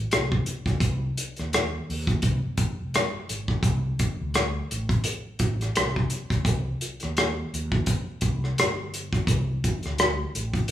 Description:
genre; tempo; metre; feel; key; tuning
R&B, neo-soul; 85 BPM; 4/4; swing 58% on 16ths; C dorian; A4 = 440 Hz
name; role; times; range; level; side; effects
mellow fretless electric bass; bass; 0.0-10.6 s; F1 to Eb2; -29 LUFS; equal; none
warm soul drum kit; drums; 0.1-10.7 s; hi-hat, kick drum, rim click; -25 LUFS; equal; none
room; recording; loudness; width
wet large studio reverb, RT60 1.1 s; band playing live in one room, small room ambience; -24 LUFS; side -12 dB against mid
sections
0.0-10.7 A section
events
none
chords
none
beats
0.10 | 0.81 1.51 2.22 2.92 | 3.63 4.34 5.04 5.75 | 6.46 7.16 7.87 8.57 | 9.28 9.98 10.69

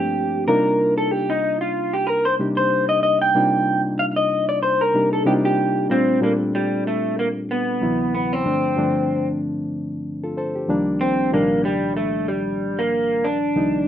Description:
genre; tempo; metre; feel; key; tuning
R&B; 94 BPM; 4/4; swing 57% on 16ths; C dorian; A4 = 439 Hz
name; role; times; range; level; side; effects
electric guitar through a small old amp; melody; 0.0-13.9 s; G3 to G5; -20 LUFS; equal; warbly pitch drift, slapback echo
bright reed electric piano; accompaniment; 0.0-13.9 s; C2 to C5; -22 LUFS; left 1 dB; overdrive
room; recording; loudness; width
moderate studio ambience, RT60 0.5 s; rough home demo mix; -18 LUFS; side -10 dB against mid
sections
0.0-5.9 A section; 5.9-13.9 B section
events
clean electric guitar solo 0.0-5.9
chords
0.5 Cm9; 5.9 Bb69; 7.8 D13; 8.4 G9sus4; 10.7 Cm9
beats
0.15 | 0.79 1.43 2.06 2.70 | 3.34 3.98 4.62 5.26 | 5.89 6.53 7.17 7.81 | 8.45 9.09 9.72 10.36 | 11.00 11.64 12.28 12.91 | 13.55

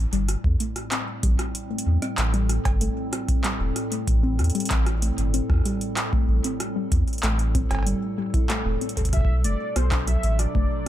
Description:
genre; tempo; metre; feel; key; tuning
IDM; 95 BPM; 4/4; straight; A dorian; A4 = 440 Hz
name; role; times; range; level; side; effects
warbly tape-like pad; sustained chords; 0.0-10.9 s; A2 to A4; -32 LUFS; equal; chorus, built-in reverb
warm sub bass; bass; 0.0-10.7 s; E1 to E2; -22 LUFS; equal; none
warbly dusty pluck; arpeggios; 0.1-10.7 s; F#3 to A4; -31 LUFS; left 3 dB; chorus, cassette tape, ping-pong delay
booming analog drum machine; drums; 0.1-10.5 s; cowbell, handclaps, hi-hat, rim click; -30 LUFS; equal; overdrive, tape echo
electronic kick drum; drums; 0.4-10.7 s; none; -24 LUFS; equal; overdrive
warm velvety synth lead; melody; 9.1-10.9 s; C5 to E5; -31 LUFS; right 1 dB; chorus, vintage 12-bit sampler grit
room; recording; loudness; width
digital ambience; none; -21 LUFS; side -12 dB against mid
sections
0.0-10.9 A section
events
none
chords
0.0 Am7; 9.1 Bm7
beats
0.29 0.92 | 1.55 2.18 2.81 3.44 | 4.08 4.71 5.34 5.97 | 6.60 7.23 7.87 8.50 | 9.13 9.76 10.39

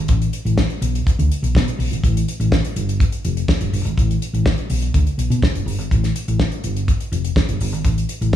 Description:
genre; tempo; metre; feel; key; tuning
disco; 124 BPM; 4/4; straight; unclear; A4 = 438 Hz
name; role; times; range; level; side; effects
hollow-body short-scale fingered electric bass; bass; 0.0-8.4 s; F1 to B2; -19 LUFS; equal; none
damped 70s drum kit; drums; 0.1-8.4 s; hi-hat, kick drum, snare drum; -20 LUFS; equal; none
room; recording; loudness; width
little or no reverb; studio ambience; -17 LUFS; side -11 dB against mid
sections
0.0-8.4 A section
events
none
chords
none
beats
| 0.09 0.58 1.06 1.54 | 2.03 2.52 3.00 3.48 | 3.97 4.45 4.94 5.42 | 5.91 6.39 6.88 7.36 | 7.85 8.33

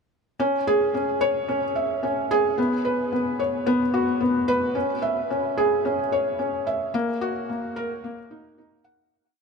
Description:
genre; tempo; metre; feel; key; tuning
electronica; 110 BPM; 4/4; straight; C# dorian; A4 = 441 Hz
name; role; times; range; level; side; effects
felt-muted upright piano; solo; 0.4-9.1 s; A#3 to F#5; -22 LUFS; equal; none
room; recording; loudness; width
moderate huge ambient reverb, RT60 7.2 s; none; -22 LUFS; side -5 dB against mid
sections
0.4-9.1 drop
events
drop 0.4-9.1; fade-out 6.2-9.1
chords
none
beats
| 0.39 0.94 1.48 2.03 | 2.58 3.12 3.67 4.21 | 4.76 5.30 5.85 6.39 | 6.94 7.48 8.03 8.57

